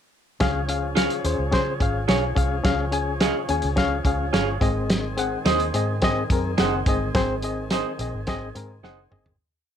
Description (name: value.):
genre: uptempo 1960s-style soul.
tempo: 107 BPM.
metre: 4/4.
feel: straight.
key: Db major.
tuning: A4 = 441 Hz.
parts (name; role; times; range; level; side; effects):
barky reed electric piano; accompaniment; 0.4-9.3 s; Ab2 to Ab5; -26 LUFS; left 4 dB; overdrive, fast tremolo.
tonewheel organ; sustained chords; 0.4-9.4 s; Eb3 to Ab4; -33 LUFS; left 1 dB; slow rotary speaker, overdrive.
vintage muted fingered electric bass; bass; 0.4-9.4 s; Gb1 to Db3; -28 LUFS; equal; none.
warm soul drum kit; drums; 0.4-9.4 s; hi-hat, kick drum, snare drum, toms; -24 LUFS; equal; none.
electric guitar through a small old amp; stabs; 1.0-9.0 s; Eb4 to F5; -27 LUFS; right 7 dB; spring reverb.
room: light reverb.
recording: none.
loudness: -21 LUFS.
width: side -9 dB against mid.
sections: 0.4-9.4 verse.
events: fade-out 7.1-9.4; drum fill 8.8-9.4.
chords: 0.4 Db; 4.6 Ab.